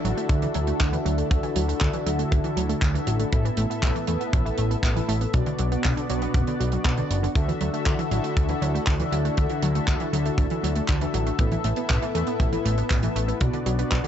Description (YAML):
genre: italo disco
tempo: 119 BPM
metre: 4/4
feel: straight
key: D major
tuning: A4 = 440 Hz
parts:
  - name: lush unison pad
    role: sustained chords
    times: 0.0-14.1 s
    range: D3 to A4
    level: -31 LUFS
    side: right 1 dB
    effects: chorus, phaser
  - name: wide unison pluck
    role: arpeggios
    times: 0.0-14.1 s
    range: B2 to B3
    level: -30 LUFS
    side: right 3 dB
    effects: ping-pong delay
  - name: mellow synth brass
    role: stabs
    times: 0.0-14.1 s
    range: A2 to E5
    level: -30 LUFS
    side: left 4 dB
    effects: chorus, ping-pong delay
  - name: fat analog bass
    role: bass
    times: 0.0-14.0 s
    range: D1 to E2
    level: -26 LUFS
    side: equal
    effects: none
  - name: tight funk drum kit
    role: drums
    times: 0.1-14.1 s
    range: handclaps, hi-hat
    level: -32 LUFS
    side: right 1 dB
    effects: none
  - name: kick drum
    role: drums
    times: 0.3-14.0 s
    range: none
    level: -24 LUFS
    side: equal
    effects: none
room: little or no reverb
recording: nothing above 7.9 kHz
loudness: -21 LUFS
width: side -9 dB against mid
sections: 0.0-14.1 A section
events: none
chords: 0.0 Dadd9; 3.3 Asus2; 5.3 Bm; 7.4 Dadd9; 11.4 Asus2; 13.4 Bm